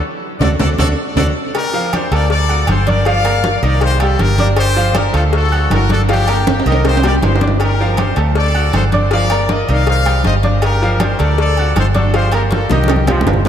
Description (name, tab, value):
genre	latin, salsa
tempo	159 BPM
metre	4/4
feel	straight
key	G minor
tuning	A4 = 440 Hz
part	bright trumpet section	melody	0.0-13.2 s	D4 to F5	-19 LUFS	left 3 dB	diffuse ambient delay
part	bright grand piano	accompaniment	0.4-13.5 s	Eb3 to F#6	-20 LUFS	right 2 dB	none
part	vintage muted fingered electric bass	bass	0.4-13.5 s	G1 to D2	-15 LUFS	equal	none
part	bongos and cowbell	percussion	0.4-13.5 s	none	-24 LUFS	left 6 dB	none
part	congas	percussion	0.4-13.4 s	none	-23 LUFS	equal	none
part	timbales and agogo bells	percussion	0.4-13.5 s	none	-22 LUFS	right 4 dB	none
part	warm trombone section	melody	13.1-13.5 s	F3 to F4	-20 LUFS	right 2 dB	diffuse ambient delay
room	moderate cathedral reverb, RT60 4.7 s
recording	dreamy mix soaked in reverb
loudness	-12 LUFS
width	side -9 dB against mid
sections	0.0-1.5 A section; 1.5-13.5 B section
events	band accent 0.0-1.5; drum fill 0.4-1.5, 6.5-7.6, 12.7-13.5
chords	0.0 D; 1.5 Gm7; 2.3 D; 3.1 Gm7; 3.8 Cm; 4.6 G5; 5.3 D; 6.1 Gm7; 6.8 Cm; 7.6 Gm7; 8.4 D; 9.1 Gm7; 9.9 Cm; 10.6 Gm7; 11.4 D; 12.1 Gm7; 12.9 Cm